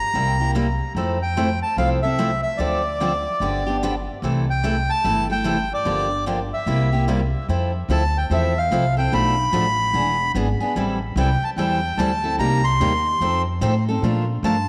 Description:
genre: acoustic string swing (jazz manouche)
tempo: 147 BPM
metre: 4/4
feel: swing 62% on 8ths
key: C major, F major from 7.5 s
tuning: A4 = 440 Hz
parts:
  - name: accordion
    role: melody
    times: 0.0-14.7 s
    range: D5 to C6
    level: -25 LUFS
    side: equal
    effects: tape echo
  - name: picked steel-string acoustic guitar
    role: accompaniment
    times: 0.1-14.6 s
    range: B2 to Bb4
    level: -26 LUFS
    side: equal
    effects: none
  - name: upright bass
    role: bass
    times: 0.1-14.7 s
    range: E1 to Bb2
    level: -26 LUFS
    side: equal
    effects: none
room: moderate echo chamber reverb, RT60 1.9 s, studio ambience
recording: none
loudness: -21 LUFS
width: mono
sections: 0.0-7.5 A section; 7.5-14.7 B section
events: none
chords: 0.1 C7; 1.0 Fmaj7; 2.6 Dm7; 3.4 G7; 4.2 C6; 5.9 Gm7; 6.7 C7; 7.5 Fmaj7; 9.1 Bm7b5; 9.9 E7; 10.8 Am7; 12.4 Cm7; 13.2 F7; 14.0 Bbmaj7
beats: 0.14 0.54 | 0.95 1.36 1.77 2.18 | 2.59 3.00 3.41 3.82 | 4.22 4.63 5.04 5.45 | 5.86 6.27 6.68 7.09 | 7.50 7.90 8.31 8.72 | 9.13 9.54 9.95 10.35 | 10.76 11.17 11.58 11.98 | 12.39 12.80 13.21 13.62 | 14.03 14.43

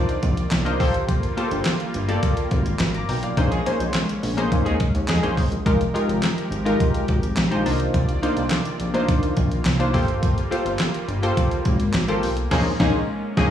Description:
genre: early-eighties boogie funk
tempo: 105 BPM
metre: 4/4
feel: straight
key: unclear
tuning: A4 = 441 Hz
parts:
  - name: funky polysynth comp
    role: accompaniment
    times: 0.0-13.5 s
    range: Ab3 to D6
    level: -24 LUFS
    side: left 1 dB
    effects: chorus, slapback echo
  - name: warm analog pad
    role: sustained chords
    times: 0.0-13.5 s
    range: C3 to D5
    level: -29 LUFS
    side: right 1 dB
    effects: chorus
  - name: clean 12-bit digital drum machine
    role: drums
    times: 0.1-13.5 s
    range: crash cymbal, handclaps, hi-hat, kick drum, snare drum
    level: -23 LUFS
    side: equal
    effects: none
  - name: chorused synth bass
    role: bass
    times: 0.2-13.5 s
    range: F1 to Bb2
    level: -24 LUFS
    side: equal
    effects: none
  - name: warm horn section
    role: second line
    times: 3.5-5.3, 12.5-13.5 s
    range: F3 to Ab4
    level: -30 LUFS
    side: equal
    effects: slapback echo
room: little or no reverb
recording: live gig heard through the venue's PA, club reverb, studio reverb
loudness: -19 LUFS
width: side -10 dB against mid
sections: 0.0-13.5 A section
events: band accent 3.4-5.7, 12.5-13.5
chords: 0.0 Cm11; 0.8 Gm11; 3.4 Bbm11; 5.7 Fm11; 7.7 Cm11; 9.9 Gm11; 12.5 Bbm11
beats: 0.52 | 1.09 1.66 2.23 2.80 | 3.37 3.94 4.51 5.09 | 5.66 6.23 6.80 7.37 | 7.94 8.52 9.09 9.66 | 10.23 10.80 11.37 11.94 | 12.52 13.09

